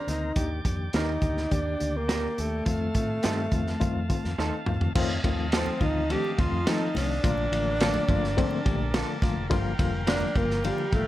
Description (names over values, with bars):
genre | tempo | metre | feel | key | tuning
uptempo 1960s-style soul | 105 BPM | 4/4 | straight | unclear | A4 = 440 Hz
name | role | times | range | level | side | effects
breathy tenor saxophone | melody | 0.0-11.1 s | G3 to G4 | -30 LUFS | equal | none
overdriven tonewheel organ | sustained chords | 0.0-11.1 s | Bb4 to Bb5 | -37 LUFS | equal | wide subtle chorus
reed electric piano | accompaniment | 0.1-11.1 s | D3 to G4 | -31 LUFS | left 5 dB | overdrive, fast tremolo
vintage muted fingered electric bass | bass | 0.1-11.0 s | F1 to F3 | -31 LUFS | equal | none
crunchy breakbeat drum kit | drums | 0.1-11.1 s | crash cymbal, hi-hat, kick drum, ride cymbal, snare drum, toms | -28 LUFS | equal | none
electric guitar through a small old amp | stabs | 0.9-10.2 s | F3 to Bb4 | -35 LUFS | right 5 dB | none
congas | percussion | 5.0-10.9 s | none | -39 LUFS | right 4 dB | none
room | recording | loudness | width
small room ambience | none | -24 LUFS | side -14 dB against mid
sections
0.0-5.0 A section; 5.0-11.1 B section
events
drum fill 4.4-5.0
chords
0.4 Ebmaj7; 2.7 F7; 7.2 Bbmaj7; 9.5 Gm7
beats
| 0.36 0.94 1.51 2.09 | 2.66 3.24 3.81 4.38 | 4.96 5.53 6.09 6.66 | 7.23 7.80 8.37 8.94 | 9.50 10.07 10.64